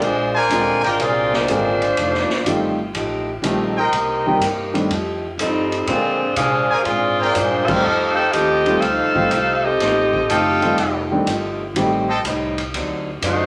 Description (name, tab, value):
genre	jazz, big band swing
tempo	123 BPM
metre	4/4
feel	swing 68% on 8ths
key	F mixolydian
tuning	A4 = 438 Hz
part	warm saxophone section	melody	0.0-13.5 s	F3 to G5	-20 LUFS	equal	none
part	picked steel-string acoustic guitar	accompaniment	0.0-13.5 s	A2 to G4	-28 LUFS	equal	none
part	upright bass	bass	0.0-13.5 s	F1 to C3	-33 LUFS	equal	none
part	swinging big-band drum kit	drums	0.0-13.4 s	crash cymbal, hi-hat, kick drum, ride cymbal, snare drum	-30 LUFS	equal	none
part	clear trumpet section	stabs	0.3-12.2 s	A4 to Ab5	-23 LUFS	equal	none
part	warm concert grand piano	accompaniment	0.5-12.1 s	D3 to G4	-24 LUFS	equal	none
room	moderate large studio reverb, RT60 0.7 s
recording	none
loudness	-19 LUFS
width	mono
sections	0.0-13.5 A section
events	band accent 7.6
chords	0.0 Bb9; 2.0 F9; 3.9 Cm7; 4.9 F9; 5.9 Bb9; 7.8 F9; 11.8 Am7b5; 12.7 D7b9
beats	| 0.01 0.50 0.99 1.48 | 1.96 2.45 2.94 3.43 | 3.92 4.41 4.90 5.39 | 5.88 6.37 6.86 7.35 | 7.84 8.33 8.82 9.31 | 9.80 10.29 10.78 11.27 | 11.76 12.24 12.73 13.22